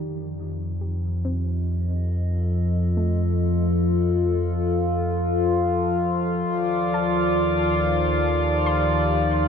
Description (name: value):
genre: ambient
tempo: free time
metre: none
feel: none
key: F mixolydian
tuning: A4 = 440 Hz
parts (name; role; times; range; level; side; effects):
- warbly tape-like pad; sustained chords; 0.0-9.5 s; Eb3 to Eb5; -28 LUFS; equal; chorus, built-in reverb
- soft round pluck; arpeggios; 0.0-9.5 s; Eb3 to C6; -36 LUFS; equal; chorus, diffuse ambient delay
- warm sub bass; bass; 0.0-9.5 s; Eb2 to F2; -25 LUFS; equal; none
- analog drone; drone; 0.9-9.5 s; F3 to F4; -24 LUFS; left 2 dB; chorus, phaser
- glass harmonica; texture; 6.5-9.5 s; D5 to D6; -25 LUFS; left 4 dB; none
room: wet cathedral reverb, RT60 6.0 s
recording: none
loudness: -20 LUFS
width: side -7 dB against mid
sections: 0.0-9.5 A section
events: fade-in on ambient pad 0.0-9.5; fade-in on synth pluck 0.0-9.5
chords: 0.0 F7; 6.5 Ebmaj7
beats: free time